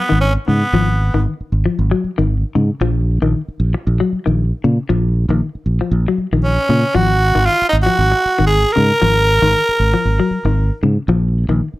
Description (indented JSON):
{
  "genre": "afrobeat",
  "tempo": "116 BPM",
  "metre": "4/4",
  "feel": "swing 55% on 16ths",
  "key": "G# dorian",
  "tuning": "A4 = 439 Hz",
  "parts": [
    { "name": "growling tenor saxophone", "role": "melody", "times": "0.0-1.2, 6.4-10.8 s", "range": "B3 to A#4", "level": "-15 LUFS", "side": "right 1 dB", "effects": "none" },
    { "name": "semi-hollow electric guitar", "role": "arpeggios", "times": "0.0-11.7 s", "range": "C#3 to F#3", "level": "-19 LUFS", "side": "left 4 dB", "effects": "none" },
    { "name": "fingered electric bass", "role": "bass", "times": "0.1-11.8 s", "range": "G#1 to A#2", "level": "-16 LUFS", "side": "equal", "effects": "none" }
  ],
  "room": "light reverb",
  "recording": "none",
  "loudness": "-13 LUFS",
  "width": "side -17 dB against mid",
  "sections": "0.0-11.8 A section",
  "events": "none",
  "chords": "0.0 G#m; 2.8 A#5; 7.0 G#sus2; 11.1 A#5",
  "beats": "0.23 | 0.75 1.27 1.78 2.30 | 2.82 3.34 3.86 4.37 | 4.89 5.41 5.93 6.44 | 6.96 7.48 7.99 8.51 | 9.03 9.54 10.06 10.57 | 11.09 11.61"
}